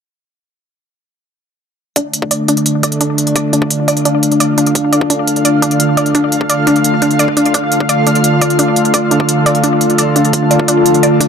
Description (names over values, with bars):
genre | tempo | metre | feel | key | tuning
dark technical drum and bass | 172 BPM | 4/4 | straight | D minor | A4 = 441 Hz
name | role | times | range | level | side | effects
sweeping resonant pad | sustained chords | 2.0-11.3 s | D3 to F4 | -14 LUFS | equal | chorus, sidechain pumping
wide unison pluck | arpeggios | 2.0-11.3 s | D4 to D5 | -17 LUFS | equal | sidechain pumping, ping-pong delay
electronic hi-hat | drums | 2.0-11.3 s | none | -17 LUFS | equal | none
electronic kick drum | drums | 2.0-11.3 s | none | -19 LUFS | left 1 dB | high-pass filter on kick
granular cloud pad | texture | 3.5-11.3 s | D4 to F5 | -16 LUFS | equal | built-in reverb, sidechain pumping
room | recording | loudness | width
moderate lush hall reverb, RT60 1.8 s, digital ambience | none | -10 LUFS | side -6 dB against mid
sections
2.0-11.3 A section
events
none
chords
2.0 Dm